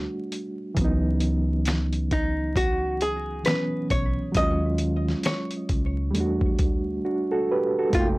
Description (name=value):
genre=lo-fi hip hop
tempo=67 BPM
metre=4/4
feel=swing 61% on 16ths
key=unclear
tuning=A4 = 441 Hz
part: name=overdriven reed electric piano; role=accompaniment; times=0.0-8.2 s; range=Fb3 to G5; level=-26 LUFS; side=right 1 dB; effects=fast tremolo, cassette tape
part: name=upright bass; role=bass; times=0.0-8.2 s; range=F1 to E2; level=-27 LUFS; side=equal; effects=transformer saturation
part: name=dusty soul sampler-style drum kit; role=drums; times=0.3-8.2 s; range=finger snaps, hi-hat, kick drum, snare drum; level=-26 LUFS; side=equal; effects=none
part: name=finger snap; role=percussion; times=1.7-5.5 s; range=none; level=barely audible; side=none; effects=none
part: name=archtop guitar, miked and amplified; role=melody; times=2.1-8.1 s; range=Eb4 to Eb5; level=-27 LUFS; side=equal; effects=none
room=light reverb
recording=dry, gritty hardware recording, vinyl crackle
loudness=-22 LUFS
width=side -21 dB against mid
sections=0.0-7.9 A section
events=drums muted 7.0-7.9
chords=0.0 Em11 (rootless); 0.8 Dbm11; 4.3 Ebm11; 6.1 Em11